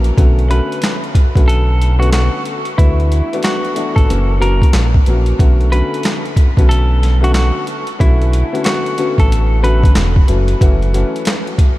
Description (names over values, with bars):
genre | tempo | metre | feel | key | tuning
hip hop, boom-bap hip-hop | 92 BPM | 4/4 | swing 63% on 16ths | B minor | A4 = 442 Hz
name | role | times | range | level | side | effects
warm upright piano | accompaniment | 0.0-11.7 s | D3 to F#4 | -20 LUFS | left 3 dB | cassette tape, high-pass filter, low-pass filter
round analog bass | bass | 0.0-11.0 s | E1 to D2 | -13 LUFS | equal | none
boom bap sampler-style drum kit | drums | 0.0-11.8 s | handclaps, hi-hat, kick drum, snare drum | -14 LUFS | equal | none
semi-hollow electric guitar | melody | 0.5-9.9 s | E4 to B4 | -22 LUFS | equal | high-pass filter, low-pass filter, tape echo
room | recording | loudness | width
light reverb, digital ambience | none | -11 LUFS | side -17 dB against mid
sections
0.0-8.0 A section; 8.0-11.8 B section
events
kick muted 6.7-8.0; break 10.6-11.8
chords
0.2 Bm7; 2.8 D6; 4.1 F#7; 5.4 Bm7; 10.3 F#m7